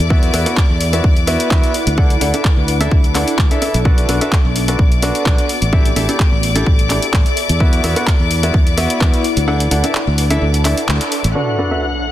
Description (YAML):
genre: piano house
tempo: 128 BPM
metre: 4/4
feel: swing 53% on 16ths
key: B minor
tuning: A4 = 436 Hz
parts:
  - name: dark chamber string section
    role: sustained chords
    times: 0.0-12.1 s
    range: D5 to F#6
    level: -23 LUFS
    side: left 4 dB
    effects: sidechain pumping, low-pass filter
  - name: fingered electric bass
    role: bass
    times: 0.0-11.3 s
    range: A1 to E2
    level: -18 LUFS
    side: equal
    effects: sidechain pumping
  - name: ethereal airy pad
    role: texture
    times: 0.0-12.1 s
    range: B3 to B5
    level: -24 LUFS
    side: left 1 dB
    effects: ensemble chorus, built-in reverb, sidechain pumping
  - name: clear baby grand piano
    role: riff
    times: 0.1-11.8 s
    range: B3 to F#5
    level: -20 LUFS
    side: equal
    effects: sidechain pumping, low-pass filter, dub echo
  - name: electronic kick drum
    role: drums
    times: 0.1-9.1 s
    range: none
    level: -13 LUFS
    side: equal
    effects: none
  - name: punchy analog drum machine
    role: drums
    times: 0.2-11.3 s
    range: handclaps, hi-hat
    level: -22 LUFS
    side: equal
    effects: none
  - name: sub drop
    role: sound effects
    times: 11.4-12.1 s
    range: none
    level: -22 LUFS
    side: equal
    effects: none
room: light reverb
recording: dense, heavily limited modern master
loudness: -12 LUFS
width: side -13 dB against mid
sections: 0.0-11.4 A section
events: kick drops out 9.5-11.4; band accent 10.9; impact 11.4-12.1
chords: 0.1 Esus2; 2.0 Dsus2; 3.9 Bm7; 5.7 A7sus4; 7.6 Esus2; 9.5 Dsus2; 11.4 Bm7